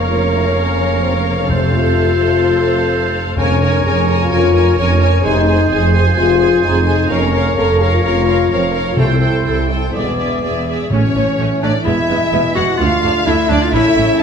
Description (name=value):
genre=cinematic, heroic adventure film score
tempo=128 BPM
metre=4/4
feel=straight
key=A major from 10.9 s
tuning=A4 = 441 Hz
part: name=rich symphonic violin section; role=melody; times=0.0-14.2 s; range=C#5 to Ab5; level=-23 LUFS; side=left 2 dB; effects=none
part: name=clear clarinet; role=second line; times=0.0-14.2 s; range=C#4 to Bb4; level=-22 LUFS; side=left 1 dB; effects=none
part: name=clear oboe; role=second line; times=0.0-10.6 s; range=C5 to D5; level=-22 LUFS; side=right 2 dB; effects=none
part: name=warm symphonic violin section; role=second line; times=0.0-14.2 s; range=C5 to F#5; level=-22 LUFS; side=equal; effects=none
part: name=rich symphonic viola section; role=accompaniment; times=0.0-14.1 s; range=G#3 to Bb4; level=-23 LUFS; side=right 2 dB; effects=none
part: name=dark French horn section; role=sustained chords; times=0.0-10.7 s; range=Bb3 to A4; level=-18 LUFS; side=left 5 dB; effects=none
part: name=mellow trombone section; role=sustained chords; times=0.0-14.2 s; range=C3 to Bb3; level=-25 LUFS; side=right 3 dB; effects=none
part: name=dark symphonic cello section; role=bass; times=0.0-14.2 s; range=C2 to A2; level=-20 LUFS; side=right 2 dB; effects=none
part: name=rich symphonic double bass section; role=bass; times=0.0-14.2 s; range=E1 to D2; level=-20 LUFS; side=right 3 dB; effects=none
part: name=timpani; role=percussion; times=1.5-4.0, 9.0-11.6 s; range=F2 to C3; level=-21 LUFS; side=left 1 dB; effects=none
room=wet recital hall reverb, RT60 1.6 s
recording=recorded in a church or concert hall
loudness=-12 LUFS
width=side -7 dB against mid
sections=0.0-10.9 A section; 10.9-14.2 B section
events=none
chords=0.0 Bbm/F; 1.5 F; 3.4 Db6/F; 5.2 Ab/F; 7.1 Bbm/F; 9.0 C6; 9.9 E7; 10.9 A; 11.9 E; 12.8 Dm